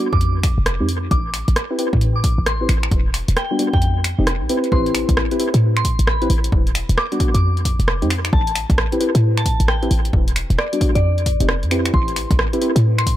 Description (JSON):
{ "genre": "UK garage, two-step garage", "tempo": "133 BPM", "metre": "4/4", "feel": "swing 64% on 16ths", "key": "A minor", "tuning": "A4 = 442 Hz", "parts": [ { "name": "deep mellow chord stab", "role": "stabs", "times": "0.0-12.7 s", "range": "G3 to B4", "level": "-23 LUFS", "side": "left 1 dB", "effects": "chorus, analog delay" }, { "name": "soft synth bell", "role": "melody", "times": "0.1-13.2 s", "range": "D5 to D6", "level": "-27 LUFS", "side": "left 1 dB", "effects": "chorus, phaser, analog delay" }, { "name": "short 808-style bass", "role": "bass", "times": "0.1-13.2 s", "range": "E1 to A2", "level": "-18 LUFS", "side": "equal", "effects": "sidechain pumping" }, { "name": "electronic kick drum", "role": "drums", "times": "0.1-13.2 s", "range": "none", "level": "-19 LUFS", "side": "equal", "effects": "none" }, { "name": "punchy analog drum machine", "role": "drums", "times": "0.2-13.2 s", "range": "finger snaps, hi-hat, rim click", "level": "-24 LUFS", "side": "right 1 dB", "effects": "dub echo" } ], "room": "light reverb, digital ambience", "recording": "echo-heavy mix", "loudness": "-16 LUFS", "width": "side -13 dB against mid", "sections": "0.0-4.7 A section; 4.7-13.2 B section", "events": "kick drops out 3.8-4.7; drop 4.7-13.2", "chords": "0.2 Fm7; 1.1 Am7; 2.9 Em7; 3.8 Fm7; 4.7 Am7; 6.5 Em7; 7.4 Fm7; 8.3 Am7; 10.1 Em7; 11.0 Fm7; 11.9 Am7", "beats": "0.21 0.66 | 1.11 1.56 2.01 2.46 | 2.92 3.37 3.82 4.27 | 4.72 5.17 5.62 6.07 | 6.53 6.98 7.43 7.88 | 8.33 8.78 9.23 9.68 | 10.13 10.59 11.04 11.49 | 11.94 12.39 12.84" }